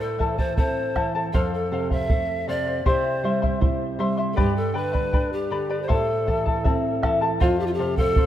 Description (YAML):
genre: andean folk, Andean ensemble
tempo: 79 BPM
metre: 2/4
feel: straight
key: A minor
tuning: A4 = 445 Hz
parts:
  - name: breathy reedy pan flute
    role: melody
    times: 0.0-8.3 s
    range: F4 to E5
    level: -26 LUFS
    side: left 1 dB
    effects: none
  - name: charango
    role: accompaniment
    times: 0.0-8.3 s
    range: E4 to C6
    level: -27 LUFS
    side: left 3 dB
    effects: none
  - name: nylon-string guitar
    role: accompaniment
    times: 0.0-8.3 s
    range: F2 to E4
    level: -27 LUFS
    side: right 2 dB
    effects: none
  - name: bombo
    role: percussion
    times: 0.2-8.3 s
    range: none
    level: -23 LUFS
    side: right 1 dB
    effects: none
room: moderate lush hall reverb, RT60 2.8 s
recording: rough home demo mix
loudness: -21 LUFS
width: side -11 dB against mid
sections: 0.0-7.4 A section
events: none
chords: 0.0 Am; 1.3 F; 2.9 C; 4.4 G; 5.9 Am; 7.4 F